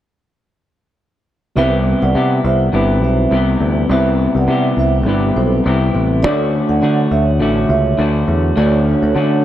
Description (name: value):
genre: indie pop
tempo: 103 BPM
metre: 4/4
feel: swing 55% on 16ths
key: unclear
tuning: A4 = 440 Hz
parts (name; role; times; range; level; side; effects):
- vibraphone with soft mallets; second line; 1.6-9.3 s; A4 to F#5; -21 LUFS; right 5 dB; wide subtle chorus, tape echo
- electric guitar through a small old amp; accompaniment; 1.6-9.4 s; C3 to G4; -18 LUFS; left 3 dB; wide subtle chorus, warbly pitch drift
- tine electric piano; accompaniment; 1.6-9.4 s; G3 to E5; -19 LUFS; right 2 dB; cassette tape
- picked electric bass; bass; 1.6-9.4 s; G1 to D3; -16 LUFS; equal; none
room: moderate plate reverb, RT60 3.0 s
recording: dreamy mix soaked in reverb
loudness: -12 LUFS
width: side -12 dB against mid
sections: 1.6-9.4 A section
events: none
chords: 1.6 Cmaj7; 6.2 Dmaj7